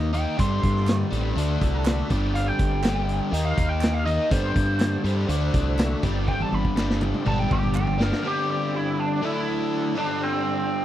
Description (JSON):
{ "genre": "classic rock", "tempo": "122 BPM", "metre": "4/4", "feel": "straight", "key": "unclear", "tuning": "A4 = 440 Hz", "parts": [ { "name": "lead guitar through a small cranked amp", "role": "melody", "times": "0.0-10.8 s", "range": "C4 to C6", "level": "-29 LUFS", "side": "right 1 dB", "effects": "wah, overdrive" }, { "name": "biting overdriven guitar", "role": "riff", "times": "0.0-10.8 s", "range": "G2 to Eb4", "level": "-26 LUFS", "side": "left 2 dB", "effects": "none" }, { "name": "growling fingered electric bass", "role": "bass", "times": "0.0-8.1 s", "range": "G1 to G2", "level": "-25 LUFS", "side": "equal", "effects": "overdrive" }, { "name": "vintage drum kit", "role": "drums", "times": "0.1-8.2 s", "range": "hi-hat, kick drum, snare drum, toms", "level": "-26 LUFS", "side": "equal", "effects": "none" }, { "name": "tonewheel organ", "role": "sustained chords", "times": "0.4-10.8 s", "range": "F#3 to E5", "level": "-37 LUFS", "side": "equal", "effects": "overdrive, chorus vibrato, slow rotary speaker" }, { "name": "group handclap", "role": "percussion", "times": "0.9-7.9 s", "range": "none", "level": "-40 LUFS", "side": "right 6 dB", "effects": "none" } ], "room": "little or no reverb", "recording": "dry, close 1970s-style studio recording", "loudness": "-21 LUFS", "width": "side -12 dB against mid", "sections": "0.0-8.2 A section; 8.2-10.8 B section", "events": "lead electric guitar solo 0.0-8.2; drum fill 6.3-8.2", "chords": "0.4 Gsus4; 1.4 Dadd9; 2.1 Gsus4; 3.3 Eb; 4.3 Gsus4; 5.3 Dadd9; 6.0 Gsus4; 7.3 G; 8.2 Gsus4; 9.2 Dadd9; 10.0 Gsus4", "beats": "| 0.39 0.88 1.37 1.86 | 2.35 2.84 3.33 3.82 | 4.31 4.80 5.29 5.79 | 6.28 6.77 7.26 7.75 | 8.24 8.73 9.23 9.72 | 10.21 10.70" }